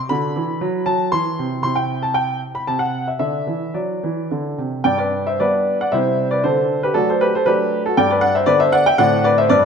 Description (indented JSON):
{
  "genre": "classical-period piano sonatina",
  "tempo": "108-119 BPM",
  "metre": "3/4",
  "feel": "rubato",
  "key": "G major",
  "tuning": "A4 = 438 Hz",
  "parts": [
    { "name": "warm baby grand piano", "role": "solo", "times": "0.1-9.7 s", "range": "G2 to C6", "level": "-16 LUFS", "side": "equal", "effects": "none" }
  ],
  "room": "wet recital hall reverb, RT60 1.6 s",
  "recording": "minimal, uncompressed stereo recording",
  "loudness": "-16 LUFS",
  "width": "side -6 dB against mid",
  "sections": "0.0-4.9 A section; 4.9-9.7 B section",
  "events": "none",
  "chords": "0.1 D; 1.1 C; 2.7 N.C.; 3.2 Dadd9; 4.3 Csus2; 4.9 G; 5.9 C; 6.4 D; 8.0 G; 9.0 D7/A"
}